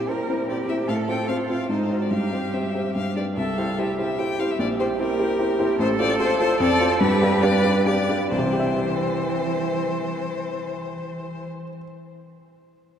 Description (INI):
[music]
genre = quick classical-period movement for piano trio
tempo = 131-151 BPM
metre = 3/4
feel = rubato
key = C major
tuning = A4 = 440 Hz
[part]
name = rich violin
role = melody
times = 0.0-11.5 s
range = Bb4 to G5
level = -27 LUFS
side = left 4 dB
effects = none
[part]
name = rich cello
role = second line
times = 0.0-11.5 s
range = E3 to B4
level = -27 LUFS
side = right 4 dB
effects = none
[part]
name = warm baby grand piano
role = accompaniment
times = 0.0-11.8 s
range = A1 to G5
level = -23 LUFS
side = equal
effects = none
[sound]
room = wet church reverb, RT60 3.6 s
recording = dark, warm production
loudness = -20 LUFS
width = side -8 dB against mid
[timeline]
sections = 0.0-8.3 A section; 8.3-10.9 B section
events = slowing down 5.2-8.3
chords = 0.0 C7/Bb; 0.9 F/A; 1.7 Ab7; 2.1 C/G; 3.0 G; 3.4 C; 4.6 C7/Bb; 5.8 F/A; 6.6 F; 7.0 G7; 8.3 C